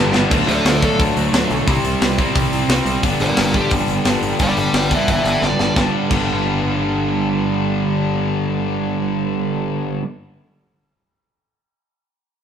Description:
punk rock; 176 BPM; 4/4; straight; G major; A4 = 440 Hz
distorted electric guitar; riff; 0.0-10.0 s; G2 to E4; -20 LUFS; left 2 dB; distortion
distorted electric guitar; riff; 0.0-10.0 s; G2 to D4; -22 LUFS; right 5 dB; distortion
overdriven picked electric bass; bass; 0.0-10.0 s; G1 to D2; -24 LUFS; equal
tight metal drum kit; drums; 0.1-6.2 s; crash cymbal, hi-hat, kick drum, snare drum; -20 LUFS; equal
dark smooth lead guitar; melody; 0.5-1.0, 3.2-5.8 s; G4 to G5; -21 LUFS; equal; overdrive
moderate stone room reverb, RT60 1.3 s; band playing live in one room; -15 LUFS; side -8 dB against mid
0.3-5.8 A section; 5.8-8.5 B section
drum fill 0.0-0.3, 5.4-5.8; lead electric guitar solo 0.3-5.8
0.3 D; 1.7 C; 3.0 G

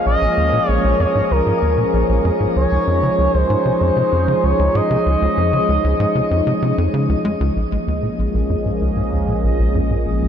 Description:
ambient, sequencer-driven space music; 96 BPM; 4/4; straight; A4 = 440 Hz
expressive synth lead; melody; 0.0-6.9 s; Bb4 to Eb5; -20 LUFS; equal; chorus, shimmer reverb, ping-pong delay
sweeping resonant pad; sustained chords; 0.0-10.3 s; F3 to Ab4; -21 LUFS; equal; chorus, shimmer reverb
tight sequencer bass; riff; 0.1-10.3 s; Bb1 to Ab3; -19 LUFS; equal; ping-pong delay
round analog bass; bass; 7.6-10.3 s; Bb1; -23 LUFS; equal
bubbling stepped-filter texture; texture; 7.8-10.3 s; Eb5; -30 LUFS; right 3 dB; chorus, built-in reverb, shimmer reverb
wet huge ambient reverb, RT60 7.4 s; dark, warm production; -15 LUFS; side -8 dB against mid
0.0-7.6 A section; 7.6-10.3 B section
filter sweep on analog synth bass 0.0-7.6, 7.6-10.3
0.0 Bbm7; 2.6 Dbadd9; 7.6 Bbm7

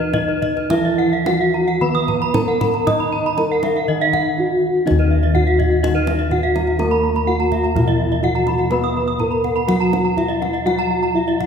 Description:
Balinese gamelan; 106-125 BPM; 4/4; straight; Eb pelog; A4 = 440 Hz
gamelan-type bronze metallophone; melody; 0.0-11.5 s; Eb4 to Eb5; -20 LUFS; equal
gamelan-type bronze metallophone; arpeggios; 0.0-11.4 s; Cb5-20c to Eb6; -24 LUFS; right 5 dB
gamelan-type bossed gongs; bass; 0.0-11.5 s; Eb2 to Eb5; -21 LUFS; equal
gamelan-type bronze metallophone; arpeggios; 0.1-11.5 s; Eb5 to Eb6; -24 LUFS; left 4 dB
kendang; percussion; 0.1-11.5 s; -27 LUFS; right 2 dB
gamelan-type bronze metallophone; accompaniment; 0.7-11.5 s; Eb3 to Eb4; -27 LUFS; left 1 dB
wet church reverb, RT60 2.7 s; recorded in a church or concert hall; -15 LUFS; side -7 dB against mid
0.0-4.9 A section; 4.9-11.5 B section

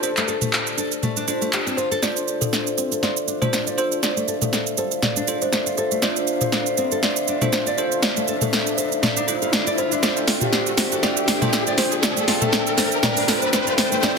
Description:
afro house; 120 BPM; 4/4; swing 55% on 16ths; D minor; A4 = 441 Hz
kalimba; melody; 0.0-14.2 s; D4 to D5; -26 LUFS; left 1 dB; ping-pong delay
dark analog pad; sustained chords; 0.0-14.2 s; D4 to A5; -29 LUFS; left 2 dB; wide subtle chorus
bell-like tine electric piano; stabs; 0.0-14.2 s; D4 to C5; -29 LUFS; right 2 dB; analog chorus, ping-pong delay
deep house drum kit; drums; 0.0-14.1 s; handclaps, hi-hat, shaker, snare drum, toms; -22 LUFS; right 1 dB
nylon-string guitar; arpeggios; 0.2-14.2 s; A3 to D5; -28 LUFS; left 1 dB; low-pass filter, ping-pong delay
riser; sound effects; 3.2-14.2 s; -28 LUFS; left 1 dB
light reverb; dense, heavily limited modern master; -18 LUFS; side -4 dB against mid
0.0-2.0 A section; 2.0-14.2 B section
filter sweep on nylon-string guitar 0.0-2.0, 2.0-14.2; build-up 2.0-14.2; drum fill 2.0-14.2; riser 3.2-14.2
0.0 Dm7

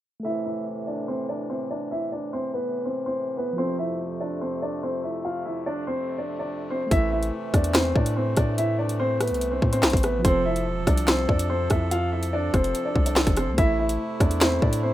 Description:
hip hop, drill; 144 BPM; 4/4; half-time; A minor; A4 = 440 Hz
dark baby grand piano; melody; 0.2-14.9 s; B3 to F5; -26 LUFS; equal
mellow tine electric piano; accompaniment; 0.2-14.9 s; F3 to E5; -34 LUFS; right 3 dB; auto-pan
accordion; sustained chords; 0.2-14.9 s; F2 to A4; -34 LUFS; left 3 dB
long sustained 808-style bass; bass; 6.9-14.9 s; E1 to A2; -26 LUFS; equal
drill drum kit; drums; 6.9-14.8 s; handclaps, hi-hat, kick drum, rim click, snare drum; -22 LUFS; equal
little or no reverb; rough home demo mix, low-pass filter; -22 LUFS; side -14 dB against mid
0.2-6.9 A section; 6.9-14.9 B section
filter sweep 0.2-6.9
0.2 Am; 3.6 F; 6.9 Am; 10.2 F; 13.6 Am

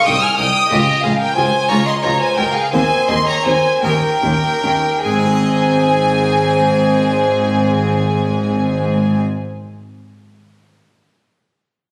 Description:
classical, baroque-style concerto movement with solo episodes; 48-62 BPM (dotted quarters); 6/8; straight; Ab major; A4 = 440 Hz
rich chamber violin section; melody; 0.0-9.2 s; Eb5 to F6; -23 LUFS; equal
rich violin; melody; 0.0-9.2 s; G4 to Ab5; -22 LUFS; equal
rich chamber violin section; second line; 0.0-9.2 s; Ab4 to F6; -24 LUFS; equal
harpsichord; accompaniment; 0.0-9.4 s; C2 to Eb5; -27 LUFS; equal
rich studio viola section; accompaniment; 0.1-9.2 s; C4 to F4; -23 LUFS; equal
rich chamber cello section; bass; 0.1-9.2 s; C2 to Ab2; -24 LUFS; equal
rich chamber double bass section; bass; 0.1-9.2 s; Ab1 to Eb2; -24 LUFS; equal
moderate recital hall reverb, RT60 1.5 s; recorded on a phone in the room, studio reverb, compression; -16 LUFS; mono
0.0-5.0 A section; 5.0-10.0 B section
slowing down 0.0-5.0
0.0 Ab/C; 0.7 Db; 1.7 Dbmaj13; 2.7 Ab/Eb; 3.8 Eb7; 5.0 Ab

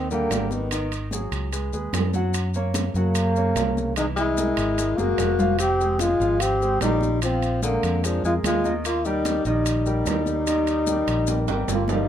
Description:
Afro-Cuban jazz; 148 BPM; 4/4; straight; Eb major; A4 = 436 Hz
breathy trombone; melody; 0.0-12.1 s; Bb3 to G4; -24 LUFS; equal
breathy tenor saxophone; second line; 0.0-12.1 s; Db3 to C4; -30 LUFS; left 4 dB
warm grand piano; accompaniment; 0.0-12.1 s; Eb3 to Gb5; -30 LUFS; right 1 dB
fingered electric bass; bass; 0.0-12.1 s; F1 to Gb2; -26 LUFS; equal
congas; percussion; 0.1-12.1 s; -32 LUFS; equal
maracas; percussion; 0.1-12.1 s; -35 LUFS; left 8 dB
timbales; percussion; 0.3-12.0 s; -31 LUFS; right 8 dB
light reverb; minimal, uncompressed stereo recording; -20 LUFS; side -10 dB against mid
0.0-12.1 A section
drum fill 5.0-5.6, 11.3-12.1
0.0 Ebmaj7; 0.7 Ab5; 1.5 Db5; 2.3 Gb; 4.0 Caug7; 5.6 Fm9; 7.2 Bb9; 8.8 Eb

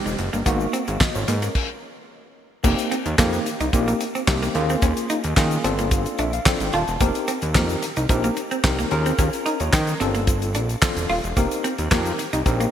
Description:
early-eighties boogie funk; 110 BPM; 4/4; straight; F minor; A4 = 437 Hz
tine electric piano; accompaniment; 0.0-12.7 s; Ab3 to A5; -25 LUFS; left 1 dB; overdrive, fast stereo tremolo
clean electric guitar; riff; 0.1-12.7 s; Ab3 to F4; -27 LUFS; right 2 dB; wide subtle chorus
fat analog bass; bass; 0.1-12.7 s; Eb1 to Eb3; -24 LUFS; equal
tube shaker; percussion; 0.1-12.7 s; -38 LUFS; left 7 dB
damped 70s drum kit; drums; 0.2-12.7 s; crash cymbal, handclaps, hi-hat, kick drum, snare drum; -22 LUFS; equal; gated reverb
moderate lush hall reverb, RT60 2.8 s; bright 1980s-style digital production; -19 LUFS; side -10 dB against mid
0.0-2.6 A section; 2.6-12.7 B section
stop 1.6-2.6; tine electric piano fill 5.9-7.0
0.5 Abm9; 2.6 F9sus4; 4.5 Eb9sus4; 5.6 G9sus4; 7.0 F9sus4; 8.9 Eb9sus4; 10.0 G9sus4; 11.4 F9sus4

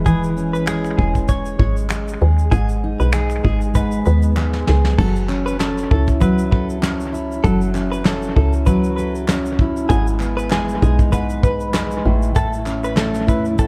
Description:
acoustic pop; 98 BPM; 4/4; swing 55% on 16ths; A4 = 440 Hz
fingerpicked steel-string acoustic guitar; accompaniment; 0.0-13.7 s; G#2 to B4; -23 LUFS; equal; analog delay
woody FM bass; bass; 0.0-13.7 s; E1 to E2; -22 LUFS; equal
direct-recorded clean electric guitar; arpeggios; 0.1-13.7 s; G#4 to C#5; -29 LUFS; equal; lush chorus
soft brush drum kit; drums; 0.1-13.7 s; crash cymbal, finger snaps, kick drum, shaker, snare drum; -22 LUFS; equal
group handclap; percussion; 0.7-13.1 s; -36 LUFS; equal; analog delay
light reverb; echo-heavy mix; -18 LUFS; mono
0.0-5.0 A section; 5.0-13.7 B section
drum fill 4.4-5.0
0.0 C#m/E; 2.5 G#m; 5.0 F#m7; 9.9 G#m; 12.1 A

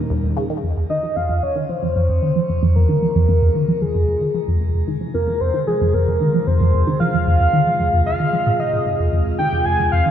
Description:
ambient, sequencer-driven space music; 113 BPM; 4/4; straight; F minor; A4 = 440 Hz
sweeping resonant pad; sustained chords; 0.0-10.1 s; Bb2 to Bb4; -28 LUFS; right 2 dB; chorus
resonant blip pluck; riff; 0.0-10.1 s; Eb2 to F3; -18 LUFS; equal; phaser, lush chorus, ping-pong delay
pulse-width lead; melody; 0.9-10.1 s; Ab4 to Ab5; -20 LUFS; left 1 dB; chorus, shimmer reverb, ping-pong delay
moderate lush hall reverb, RT60 2.7 s; cassette tape; -16 LUFS; side -9 dB against mid
0.6-10.1 A section
fade-in on analog synth pad 0.6-10.1; filter sweep on synth arpeggio sound 0.6-10.1
0.0 Eb; 0.6 Fm

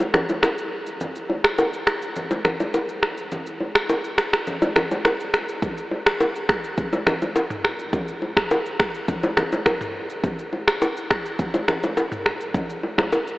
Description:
afrobeats; 104 BPM; 4/4; straight
afro-pop drum kit; drums; 0.0-13.4 s; finger snaps, kick drum, rim click, shaker, toms; -23 LUFS; equal
bongos and congas; percussion; 0.0-13.3 s; -24 LUFS; equal
wet huge ambient reverb, RT60 7.1 s; dreamy mix soaked in reverb, AM radio sound; -20 LUFS; side -19 dB against mid
0.0-13.4 A section
break 0.0-5.6

